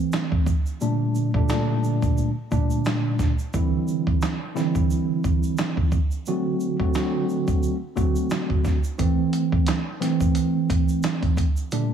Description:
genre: hip hop, boom-bap hip-hop.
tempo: 88 BPM.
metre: 4/4.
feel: swing 57% on 16ths.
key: unclear.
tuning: A4 = 440 Hz.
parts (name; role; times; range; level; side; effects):
mellow tine electric piano; accompaniment; 0.0-11.9 s; Bb2 to F#4; -23 LUFS; right 2 dB; medium stereo tremolo, high-pass filter, low-pass filter.
dusty soul sampler-style drum kit; drums; 0.1-11.9 s; handclaps, hi-hat, kick drum, snare drum; -23 LUFS; right 1 dB; none.
egg shaker; percussion; 0.1-11.9 s; none; -44 LUFS; right 4 dB; none.
room: little or no reverb.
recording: heavily compressed radio sound.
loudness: -21 LUFS.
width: side -8 dB against mid.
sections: 0.0-11.9 A section.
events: break 0.0-9.0.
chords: 0.0 Am; 0.8 Gmadd9; 3.5 Cadd9; 6.3 D7; 9.0 Am.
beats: 0.13 | 0.81 1.49 2.17 2.85 | 3.54 4.22 4.90 5.58 | 6.26 6.95 7.63 8.31 | 8.99 9.67 10.36 11.04 | 11.72.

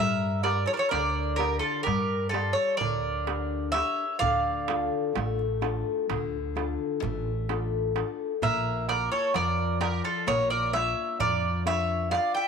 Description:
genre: greek folk, Greek bouzouki band.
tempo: 129 BPM (eighths).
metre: 9/8.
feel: straight.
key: unclear.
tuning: A4 = 440 Hz.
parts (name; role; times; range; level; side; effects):
Greek bouzouki; melody; 0.0-12.5 s; A4 to G5; -27 LUFS; equal; none.
mandolin; second line; 0.0-12.5 s; F4 to E5; -34 LUFS; right 10 dB; none.
nylon-string guitar; accompaniment; 0.0-12.5 s; D3 to D5; -32 LUFS; left 9 dB; none.
upright bass; bass; 0.0-12.2 s; A1 to G2; -32 LUFS; right 1 dB; none.
darbuka; percussion; 0.4-12.3 s; none; -35 LUFS; right 10 dB; none.
room: moderate echo chamber reverb, RT60 2.0 s.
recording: 1960s-style stereo with parts hard left and right.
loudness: -25 LUFS.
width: side -6 dB against mid.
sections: 0.0-12.5 A section.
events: speeding up 0.0-12.5.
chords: 0.0 Gm; 4.2 Dm; 8.4 Bb.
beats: 0.45 0.92 1.39 1.87 2.34 2.81 3.28 3.75 | 4.22 4.69 5.16 5.62 6.09 6.56 7.02 7.49 7.95 | 8.42 8.88 9.35 9.81 10.27 10.73 11.19 11.65 12.11.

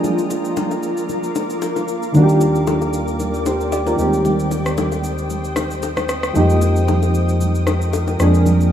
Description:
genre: amapiano.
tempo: 114 BPM.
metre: 4/4.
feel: swing 55% on 16ths.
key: Eb major.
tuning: A4 = 437 Hz.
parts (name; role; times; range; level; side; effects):
soft electric-piano-like synth keys; accompaniment; 0.0-8.7 s; Eb3 to D5; -20 LUFS; right 2 dB; chorus, tremolo.
granular cloud pad; sustained chords; 0.0-8.7 s; F4 to Eb6; -24 LUFS; left 2 dB; built-in reverb.
electronic shaker and rim click; drums; 0.0-8.7 s; none; -28 LUFS; equal; none.
congas and bongos; percussion; 0.0-8.6 s; none; -26 LUFS; left 5 dB; none.
fat analog bass; bass; 2.1-8.7 s; Eb2 to F2; -18 LUFS; equal; none.
room: moderate lush hall reverb, RT60 1.9 s.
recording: rough home demo mix, small room ambience.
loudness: -16 LUFS.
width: side -10 dB against mid.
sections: 0.0-8.7 A section.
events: break 1.1-2.1.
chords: 0.0 Bb7/F; 2.1 Ebmaj7; 4.0 Abmaj7/Eb; 6.4 Fm11; 8.2 Bb7/F.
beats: | 0.04 0.57 1.09 1.62 | 2.15 2.67 3.20 3.72 | 4.25 4.78 5.30 5.83 | 6.36 6.88 7.41 7.93 | 8.46.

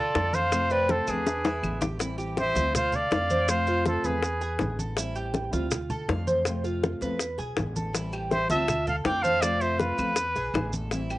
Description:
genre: latin, Cuban son and guajira.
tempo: 162 BPM.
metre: 4/4.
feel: straight.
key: A minor.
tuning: A4 = 440 Hz.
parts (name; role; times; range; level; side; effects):
breathy trumpet; melody; 0.0-4.8, 8.3-10.7 s; G#4 to G5; -27 LUFS; equal; cassette tape.
breathy bright jazz flute; second line; 0.0-4.8, 8.3-10.2 s; B4 to D6; -34 LUFS; right 2 dB; cassette tape.
Cuban tres; arpeggios; 0.0-11.2 s; C4 to F5; -32 LUFS; right 2 dB; cassette tape, analog delay.
upright bass; bass; 0.0-11.2 s; A1 to F2; -32 LUFS; equal; none.
nylon-string guitar; accompaniment; 0.1-11.2 s; C3 to F4; -35 LUFS; left 2 dB; cassette tape.
congas; percussion; 0.1-11.2 s; none; -34 LUFS; equal; none.
maracas; percussion; 0.1-11.2 s; none; -37 LUFS; right 4 dB; none.
bongos; percussion; 0.2-11.1 s; none; -29 LUFS; left 4 dB; none.
claves; percussion; 0.5-1.8, 8.1-11.2 s; none; -40 LUFS; left 2 dB; none.
room: moderate studio ambience, RT60 0.5 s.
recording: home recording on cassette, nothing above 10.8 kHz.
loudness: -24 LUFS.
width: side -17 dB against mid.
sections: 0.0-2.0 A section; 2.0-11.2 B section.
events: drum fill 1.3-2.0.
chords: 0.0 Dm; 0.5 F; 1.3 E7; 2.0 Am7; 2.7 Dm; 3.5 F; 4.2 E7; 5.0 Am7; 5.7 Dm; 6.5 F; 7.2 E7; 7.9 Am7; 8.7 Dm; 9.4 F; 10.2 E7.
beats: 0.15 | 0.52 0.89 1.26 1.64 | 2.01 2.38 2.75 3.12 | 3.49 3.86 4.24 4.61 | 4.98 5.35 5.72 6.09 | 6.46 6.83 7.20 7.57 | 7.95 8.32 8.69 9.06 | 9.43 9.80 10.17 10.54 | 10.91.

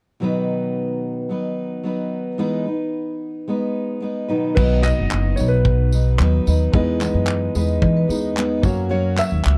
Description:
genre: acoustic pop.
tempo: 111 BPM.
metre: 4/4.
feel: straight.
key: B major.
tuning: A4 = 440 Hz.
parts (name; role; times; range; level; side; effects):
picked steel-string acoustic guitar; accompaniment; 0.2-9.6 s; B2 to B4; -24 LUFS; equal; none.
dark upright piano; melody; 4.5-9.6 s; B4 to E5; -26 LUFS; equal; none.
warm grand piano; accompaniment; 4.6-9.6 s; E3 to D#5; -32 LUFS; equal; none.
upright bass; bass; 4.6-9.6 s; F#1 to E3; -21 LUFS; equal; none.
loose indie drum kit; drums; 4.6-9.6 s; crash cymbal, handclaps, kick drum, tambourine; -25 LUFS; equal; none.
vibraphone with soft mallets; second line; 7.8-8.6 s; D#4 to D#5; -30 LUFS; equal; none.
room: little or no reverb.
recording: dark, warm production.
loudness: -20 LUFS.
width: mono.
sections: 0.2-4.6 A section; 4.6-9.6 B section.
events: none.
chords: 0.2 B; 2.4 Emaj7; 4.3 B; 6.7 Emaj7; 8.6 F#.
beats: | 0.22 0.76 1.31 1.85 | 2.40 2.94 3.48 4.03 | 4.57 5.11 5.65 6.19 | 6.74 7.28 7.82 8.36 | 8.90 9.44.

